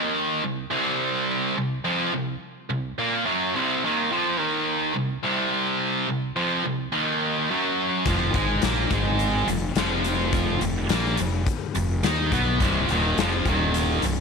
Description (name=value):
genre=blues rock power trio and southern rock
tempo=106 BPM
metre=4/4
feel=straight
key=unclear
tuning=A4 = 438 Hz
part: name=tight distorted guitar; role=riff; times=0.0-14.2 s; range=C2 to Eb4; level=-23 LUFS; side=right 1 dB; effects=distortion
part: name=fuzz fingered electric bass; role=bass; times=8.1-14.2 s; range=C1 to Eb2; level=-26 LUFS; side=equal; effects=overdrive
part: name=huge arena drum kit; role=drums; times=8.1-14.2 s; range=hi-hat, kick drum, snare drum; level=-27 LUFS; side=left 5 dB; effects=none
room=light reverb, studio ambience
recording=1960s-style stereo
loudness=-22 LUFS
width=side -4 dB against mid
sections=0.0-14.2 A section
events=none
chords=0.0 Cdim; 8.1 Fmadd11; 12.6 Cmadd11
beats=0.13 0.70 | 1.26 1.83 2.40 2.96 | 3.53 4.09 4.66 5.23 | 5.79 6.36 6.93 7.49 | 8.06 8.63 9.20 9.76 | 10.33 10.90 11.46 12.03 | 12.60 13.17 13.74